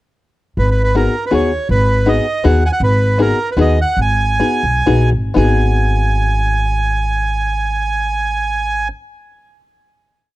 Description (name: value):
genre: musette waltz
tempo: 116-163 BPM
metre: 3/4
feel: rubato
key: G# minor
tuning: A4 = 440 Hz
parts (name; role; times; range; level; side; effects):
- bandoneon; melody; 0.6-8.9 s; A#4 to G#5; -18 LUFS; right 3 dB; none
- upright bass; bass; 0.6-8.9 s; G#1 to D#2; -16 LUFS; equal; none
- open-back banjo; accompaniment; 0.9-8.9 s; B3 to G#4; -17 LUFS; left 4 dB; none
room: small room ambience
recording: dry, close 1970s-style studio recording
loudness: -13 LUFS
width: side -16 dB against mid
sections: 0.6-5.4 A section; 5.4-8.4 final chord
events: slowing down 2.8-5.4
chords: 0.6 G#m7